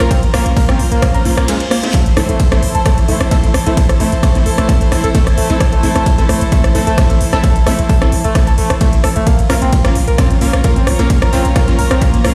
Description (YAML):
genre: driving peak-time techno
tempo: 131 BPM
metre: 4/4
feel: straight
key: A phrygian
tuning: A4 = 440 Hz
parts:
  - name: overdriven synth lead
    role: riff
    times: 0.0-12.2 s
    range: G#3 to Bb4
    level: -22 LUFS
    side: equal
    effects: sidechain pumping, delay
  - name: rave stab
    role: stabs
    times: 0.0-12.3 s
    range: A3 to F4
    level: -24 LUFS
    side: equal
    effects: chorus, built-in reverb, sidechain pumping, dub echo
  - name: growling 808-style bass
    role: bass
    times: 0.0-12.3 s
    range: A1 to Bb1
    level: -19 LUFS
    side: equal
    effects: overdrive, sidechain pumping, low-pass filter
  - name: techno drum kit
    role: drums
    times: 0.0-12.3 s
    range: hi-hat, ride cymbal, rim click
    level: -23 LUFS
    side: equal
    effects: overdrive, small room ambience
  - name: warm studio string section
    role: texture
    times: 0.0-12.3 s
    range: E4 to Bb5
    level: -25 LUFS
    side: equal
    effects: sidechain pumping
  - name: electronic kick drum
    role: drums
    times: 0.1-12.1 s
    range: none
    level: -15 LUFS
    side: equal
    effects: small room ambience
  - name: reverse cymbal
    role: sound effects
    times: 1.2-1.9 s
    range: none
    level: -30 LUFS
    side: equal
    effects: none
room: digital ambience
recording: played on a big sound system in a bare room, stone room reverb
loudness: -13 LUFS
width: mono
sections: 0.0-12.3 A section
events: reverse cymbal 1.2-1.9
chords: 0.0 Bbm; 1.9 Am; 9.3 Bbm